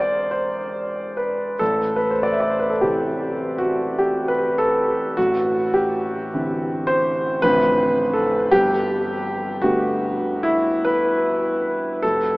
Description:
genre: classical, impressionist solo piano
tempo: 46-55 BPM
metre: 3/4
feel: rubato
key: unclear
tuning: A4 = 439 Hz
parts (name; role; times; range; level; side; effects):
- warm concert grand piano; solo; 0.0-12.4 s; E1 to E5; -18 LUFS; equal; none
room: wet huge ambient reverb, RT60 6.9 s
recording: in a vast, echoing space, small speaker sound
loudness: -18 LUFS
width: side -23 dB against mid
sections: 0.0-12.4 A section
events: none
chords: 0.0 Eaug7; 1.6 Am; 5.2 C69/A; 7.4 Dm9/A; 8.5 Gadd9

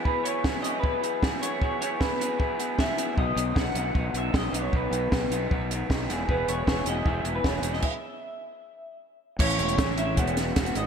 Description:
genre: indie rock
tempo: 154 BPM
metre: 4/4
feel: straight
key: E major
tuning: A4 = 440 Hz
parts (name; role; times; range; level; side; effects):
- electric guitar through a small old amp; riff; 0.0-10.9 s; A2 to G#4; -30 LUFS; equal; none
- electric guitar through a small old amp; melody; 0.1-10.9 s; B4 to F#5; -31 LUFS; equal; analog chorus
- compact cocktail drum kit; drums; 0.1-10.8 s; crash cymbal, hi-hat, kick drum, snare drum; -27 LUFS; equal; gated reverb
- fuzz fingered electric bass; bass; 3.2-10.9 s; E1 to B1; -31 LUFS; equal; overdrive
room: moderate lush hall reverb, RT60 1.9 s, small room ambience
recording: bright 1980s-style digital production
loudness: -24 LUFS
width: side -7 dB against mid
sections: 0.0-9.4 A section; 9.4-10.9 B section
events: stop 7.8-9.4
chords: 0.0 Eadd9; 3.2 B; 6.1 Eadd9; 9.4 A; 10.2 Eadd9

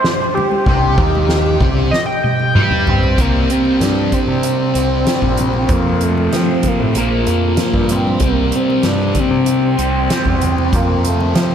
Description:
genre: psychedelic rock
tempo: 95 BPM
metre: 4/4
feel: straight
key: unclear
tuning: A4 = 440 Hz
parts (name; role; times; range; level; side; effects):
- sync lead; melody; 0.0-11.5 s; A3 to G5; -18 LUFS; right 1 dB; chorus, analog delay
- soft-mallet drum kit; drums; 0.0-11.5 s; hi-hat, kick drum, ride cymbal, snare drum, toms; -19 LUFS; equal; none
- congas; percussion; 0.4-11.4 s; none; -30 LUFS; left 3 dB; none
- fuzz guitar; riff; 0.7-11.5 s; F2 to G4; -19 LUFS; left 1 dB; distortion, phaser
- growling picked electric bass; bass; 0.7-11.5 s; Bb1 to F3; -18 LUFS; equal; overdrive
room: moderate huge ambient reverb, RT60 7.3 s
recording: dreamy mix soaked in reverb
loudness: -13 LUFS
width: side -8 dB against mid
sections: 0.0-3.2 A section; 3.2-11.5 B section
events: analog synth lead solo 0.0-3.2; drum fill 1.9-3.2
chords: 0.0 C5; 5.7 F; 7.0 Bb5; 8.2 C; 10.7 F

